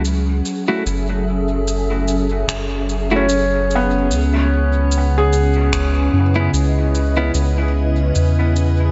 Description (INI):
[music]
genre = ambient dub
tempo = 74 BPM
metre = 4/4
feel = swing 56% on 16ths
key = F# dorian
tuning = A4 = 442 Hz
[part]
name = soft additive organ-like pad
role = sustained chords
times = 0.0-8.9 s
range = C#3 to E5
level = -24 LUFS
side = equal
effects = ensemble chorus, built-in reverb
[part]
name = felt-muted upright piano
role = arpeggios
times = 0.0-8.9 s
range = B3 to G#4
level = -23 LUFS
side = equal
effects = dub echo
[part]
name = soft dub sub bass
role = bass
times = 0.0-8.9 s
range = F#1 to F#2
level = -20 LUFS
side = equal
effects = none
[part]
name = shaker and finger snaps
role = drums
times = 0.0-8.7 s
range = none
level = -31 LUFS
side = equal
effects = studio ambience, dub echo
[part]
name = clean electric guitar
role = stabs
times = 0.7-7.3 s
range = A3 to F#4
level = -28 LUFS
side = equal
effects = dub echo
[part]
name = electronic kick drum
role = drums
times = 2.5-5.9 s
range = none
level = -32 LUFS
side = equal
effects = none
[sound]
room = light reverb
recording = nothing above 7.8 kHz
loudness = -17 LUFS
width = mono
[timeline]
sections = 0.0-8.9 A section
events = none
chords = 0.0 F#m7; 4.1 C#m7